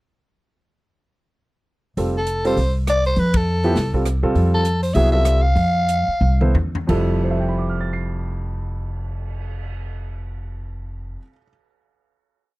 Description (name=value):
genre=modal jazz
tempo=171-202 BPM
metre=4/4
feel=swing 60% on 8ths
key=F lydian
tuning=A4 = 441 Hz
part: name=warm baby grand piano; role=accompaniment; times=2.0-11.5 s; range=F2 to C7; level=-22 LUFS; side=right 1 dB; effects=none
part: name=upright bass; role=bass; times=2.0-11.2 s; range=F1 to C3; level=-20 LUFS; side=equal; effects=none
part: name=swinging big-band drum kit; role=drums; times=2.0-9.6 s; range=crash cymbal, cymbal swell, hi-hat, kick drum, ride cymbal, rim click, snare drum, toms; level=-27 LUFS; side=equal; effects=none
part: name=growling soprano saxophone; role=melody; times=2.2-6.5 s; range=A4 to F5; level=-21 LUFS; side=equal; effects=none
room=little or no reverb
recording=dry, close 1970s-style studio recording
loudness=-17 LUFS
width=side -19 dB against mid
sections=2.0-6.9 A section; 6.9-9.7 final chord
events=band accent 3.3; slowing down 4.4-6.9; drum fill 6.2-6.9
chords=2.0 Fmaj9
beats=| 1.98 2.28 2.57 2.87 | 3.17 3.47 3.76 4.06 | 4.36 4.66 4.96 5.26 | 5.57 5.88 6.21 6.54 | 6.88 7.24 7.58 7.94 | 8.29 8.64 8.99 9.34